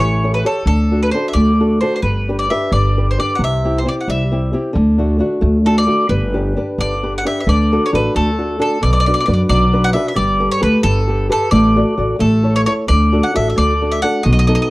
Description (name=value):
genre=italian folk, Italian serenade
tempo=88 BPM (dotted quarters)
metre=6/8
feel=straight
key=G major, D major from 7.5 s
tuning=A4 = 439 Hz
part: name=bowl-back mandolin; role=melody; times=0.0-14.7 s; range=A4 to F#5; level=-19 LUFS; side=equal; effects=none
part: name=nylon-string guitar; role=accompaniment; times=0.0-14.7 s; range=B2 to D5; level=-18 LUFS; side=equal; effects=none
part: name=upright bass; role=bass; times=0.0-14.6 s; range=G1 to F#2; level=-16 LUFS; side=equal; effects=none
room=moderate studio ambience, RT60 0.5 s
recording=worn, warbling old tape, cassette tape, warbly pitch drift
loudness=-13 LUFS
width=side -19 dB against mid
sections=0.0-7.5 A section; 7.5-14.7 B section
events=none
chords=0.0 A7; 0.7 D; 2.0 G; 3.4 C; 4.7 D; 6.1 G; 7.5 D; 8.8 Bm; 10.2 Gadd9; 11.5 D/A; 12.2 A; 12.9 D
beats=| 0.66 1.34 | 2.03 2.72 | 3.40 4.08 | 4.75 5.42 | 6.10 6.78 | 7.46 8.14 | 8.82 9.49 | 10.16 10.84 | 11.52 12.20 | 12.89 13.57 | 14.26